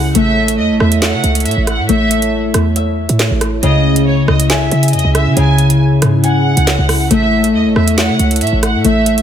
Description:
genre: hip hop, drill.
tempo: 138 BPM.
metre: 4/4.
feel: half-time.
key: unclear.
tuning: A4 = 439 Hz.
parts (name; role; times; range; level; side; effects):
warm studio violin section; second line; 0.0-9.2 s; C#5 to G#5; -19 LUFS; right 3 dB; tape echo.
warm analog pad; sustained chords; 0.0-9.2 s; C#3 to C#5; -20 LUFS; right 2 dB; chorus.
Celtic harp; arpeggios; 0.0-9.2 s; C#3 to G#5; -14 LUFS; left 3 dB; tape echo.
short 808-style bass; bass; 0.0-9.2 s; A1 to C#3; -16 LUFS; right 1 dB; none.
drill drum kit; drums; 0.1-9.2 s; handclaps, hi-hat, rim click, snare drum; -18 LUFS; right 2 dB; none.
room: light reverb.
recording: none.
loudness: -10 LUFS.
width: side -9 dB against mid.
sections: 0.0-9.2 A section.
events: none.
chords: 0.1 A; 3.6 C#m; 7.1 A.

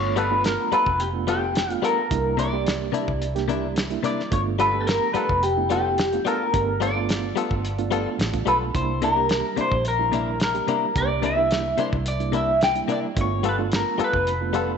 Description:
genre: straight-eighth soul blues.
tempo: 108 BPM.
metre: 4/4.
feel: straight.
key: unclear.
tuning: A4 = 440 Hz.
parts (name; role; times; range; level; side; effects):
electric guitar through a small old amp; melody; 0.0-14.8 s; G4 to G5; -24 LUFS; left 1 dB; phaser.
reed electric piano; accompaniment; 0.0-14.8 s; G3 to G4; -29 LUFS; right 12 dB; fast tremolo.
vintage muted fingered electric bass; bass; 0.0-14.8 s; F1 to C2; -28 LUFS; equal; none.
direct-recorded clean electric guitar; stabs; 0.2-14.7 s; C3 to A4; -28 LUFS; left 9 dB; tremolo.
cloth-damped thuddy drum kit; drums; 0.2-14.7 s; hi-hat, kick drum, snare drum; -28 LUFS; equal; none.
room: moderate echo chamber reverb, RT60 2.0 s.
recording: 1960s-style stereo with parts hard left and right, nothing above 8.0 kHz.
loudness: -20 LUFS.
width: side -6 dB against mid.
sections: 0.0-14.8 A section.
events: none.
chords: 0.0 G9; 2.1 C9; 4.3 G9; 8.7 C9; 13.2 G9.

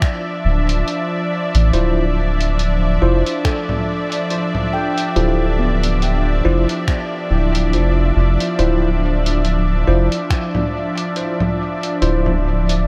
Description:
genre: ambient dub.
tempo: 70 BPM.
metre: 4/4.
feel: swing 57% on 16ths.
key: D dorian.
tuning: A4 = 439 Hz.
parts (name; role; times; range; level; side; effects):
warm analog pad; sustained chords; 0.0-12.9 s; F3 to E5; -23 LUFS; equal; chorus.
electronic kick drum; drums; 0.0-10.5 s; none; -20 LUFS; equal; none.
lo-fi sampler-style drum kit; drums; 0.0-12.8 s; congas, finger snaps, hi-hat; -28 LUFS; equal; dub echo.
soft dub sub bass; bass; 0.4-12.9 s; D1 to A1; -19 LUFS; equal; none.
bell-like tine electric piano; stabs; 1.7-12.3 s; E4 to C5; -26 LUFS; equal; dub echo.
handpan; arpeggios; 3.4-10.4 s; B3 to G5; -29 LUFS; equal; dub echo.
room: moderate lush hall reverb, RT60 1.9 s.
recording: dreamy mix soaked in reverb.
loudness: -18 LUFS.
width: mono.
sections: 0.0-12.9 A section.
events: none.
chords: 0.0 Dm9.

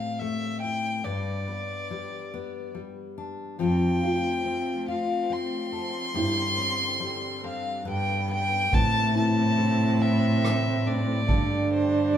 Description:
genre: acoustic folk-pop ballad.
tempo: 70 BPM.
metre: 3/4.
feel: straight.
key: unclear.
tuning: A4 = 441 Hz.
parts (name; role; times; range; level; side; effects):
warm violin; melody; 0.0-12.2 s; C5 to C6; -29 LUFS; left 1 dB; none.
fingerpicked steel-string acoustic guitar; accompaniment; 0.0-12.2 s; G2 to B4; -30 LUFS; left 4 dB; none.
warm cello; bass; 1.1-12.2 s; F2 to A2; -29 LUFS; right 1 dB; none.
warm chamber string section; sustained chords; 3.6-12.2 s; C3 to G4; -36 LUFS; equal; none.
felt-muted upright piano; arpeggios; 4.0-10.1 s; E4 to F4; -32 LUFS; right 2 dB; none.
clear French horn; second line; 8.7-12.2 s; C4 to D4; -27 LUFS; right 4 dB; none.
soft-mallet drum kit; drums; 8.7-12.2 s; kick drum, ride cymbal, rim click; -29 LUFS; right 1 dB; none.
room: wet large studio reverb, RT60 1.2 s.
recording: band playing live in one room.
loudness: -23 LUFS.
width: side -10 dB against mid.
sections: 0.0-8.7 A section; 8.7-12.2 B section.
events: none.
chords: 0.0 Am7; 1.1 G; 3.6 F; 6.2 Gsus4; 7.9 G; 8.7 Amadd9; 11.3 Gsus2.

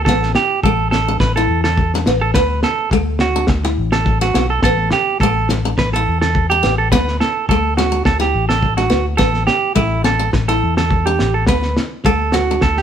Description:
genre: highlife guitar band.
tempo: 105 BPM.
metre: 4/4.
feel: swing 54% on 16ths.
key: unclear.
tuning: A4 = 440 Hz.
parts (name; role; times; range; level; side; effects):
picked steel-string acoustic guitar; accompaniment; 0.0-12.8 s; A3 to E4; -20 LUFS; left 3 dB; none.
semi-hollow electric guitar; arpeggios; 0.0-12.8 s; E4 to B4; -18 LUFS; right 6 dB; none.
vintage muted fingered electric bass; bass; 0.0-12.8 s; A1 to E2; -19 LUFS; left 1 dB; none.
cloth-damped thuddy drum kit; drums; 0.1-12.8 s; kick drum, snare drum; -19 LUFS; left 1 dB; none.
room: light reverb.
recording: band playing live in one room.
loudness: -13 LUFS.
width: side -9 dB against mid.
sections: 0.0-12.8 A section.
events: none.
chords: 0.1 Asus4; 2.4 D6; 4.6 Asus4; 6.9 D6; 9.2 Asus4; 11.5 D6.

